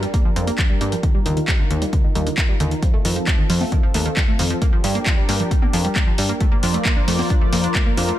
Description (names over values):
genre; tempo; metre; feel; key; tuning
uplifting trance; 134 BPM; 4/4; straight; unclear; A4 = 439 Hz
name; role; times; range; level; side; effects
lush unison pad; sustained chords; 0.0-8.2 s; F3 to D5; -26 LUFS; left 1 dB; chorus, sidechain pumping
wide unison pluck; arpeggios; 0.0-8.1 s; D3 to D4; -26 LUFS; right 2 dB; sidechain pumping, ping-pong delay
plucky analog bass; bass; 0.0-8.1 s; Eb2 to G2; -21 LUFS; equal; sidechain pumping
punchy analog drum machine; drums; 0.0-8.2 s; congas, handclaps, hi-hat; -25 LUFS; left 1 dB; none
electronic kick drum; drums; 0.1-7.8 s; none; -18 LUFS; equal; none
room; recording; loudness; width
little or no reverb; none; -16 LUFS; side -13 dB against mid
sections
0.0-8.2 A section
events
filter sweep on analog synth pad 0.0-8.2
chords
0.0 Gm; 1.0 Ebsus2; 2.8 F; 4.6 Gm; 6.4 Bbadd9/F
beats
0.14 0.59 | 1.03 1.48 1.93 2.38 | 2.83 3.27 3.72 4.17 | 4.62 5.06 5.51 5.96 | 6.41 6.86 7.30 7.75